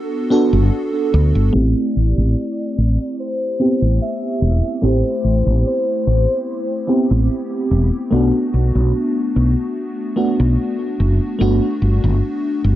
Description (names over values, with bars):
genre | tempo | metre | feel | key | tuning
vaporwave | 73 BPM | 4/4 | straight | A dorian | A4 = 440 Hz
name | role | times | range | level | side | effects
warm velvety synth lead | melody | 0.0-7.7 s | A4 to E5 | -24 LUFS | left 1 dB | chorus, analog delay
FM electric piano with soft pad layer | accompaniment | 0.0-12.8 s | A3 to A4 | -19 LUFS | equal | tremolo, lush chorus, analog delay
woody fretless electric bass | bass | 0.5-12.8 s | E1 to D2 | -15 LUFS | equal | tube saturation
room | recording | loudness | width
little or no reverb | dark, warm production, cassette tape, low-pass filter | -15 LUFS | side -14 dB against mid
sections
0.0-1.5 A section; 1.5-12.8 B section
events
filter sweep 1.5-12.8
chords
0.0 Gmaj9; 1.5 Am7; 8.1 Bm7; 11.4 Gmaj9